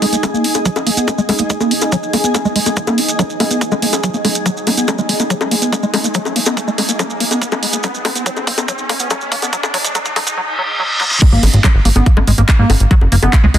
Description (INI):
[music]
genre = psychedelic trance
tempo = 142 BPM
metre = 4/4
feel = straight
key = G# minor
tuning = A4 = 440 Hz
[part]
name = liquid acid bass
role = riff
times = 0.0-13.6 s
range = F#3 to D#4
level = -18 LUFS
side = equal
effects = chorus, auto-pan, sidechain pumping, digital delay
[part]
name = big-room dance drum kit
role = drums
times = 0.0-13.6 s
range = bongos, crash cymbal, handclaps, hi-hat, snare drum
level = -19 LUFS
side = left 2 dB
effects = overdrive
[part]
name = riser and reverse cymbal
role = sound effects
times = 1.1-11.2 s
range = none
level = -23 LUFS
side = equal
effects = none
[part]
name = granular cloud pad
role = texture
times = 0.0-10.4 s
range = D#4 to G#5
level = -22 LUFS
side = equal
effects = built-in reverb, sidechain pumping
[part]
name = maracas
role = percussion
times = 0.1-10.4 s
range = none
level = -23 LUFS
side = right 4 dB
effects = none
[part]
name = electronic kick drum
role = drums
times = 0.2-13.4 s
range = none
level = -13 LUFS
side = equal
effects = high-pass filter on kick
[part]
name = plucky analog bass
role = bass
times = 11.3-13.6 s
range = F#1 to G#2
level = -11 LUFS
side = equal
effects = none
[sound]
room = light reverb, digital ambience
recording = dense, heavily limited modern master, high-pass filter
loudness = -12 LUFS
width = side -10 dB against mid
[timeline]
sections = 0.0-11.2 A section; 11.2-13.6 B section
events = build-up 0.0-11.2; filter sweep on acid bass 0.0-11.2; filter sweep 0.0-11.2; riser 1.1-10.4; drum fill 4.5-10.4, 11.0; reverse cymbal 10.4-11.2; drop 11.2-13.6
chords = 0.0 G#5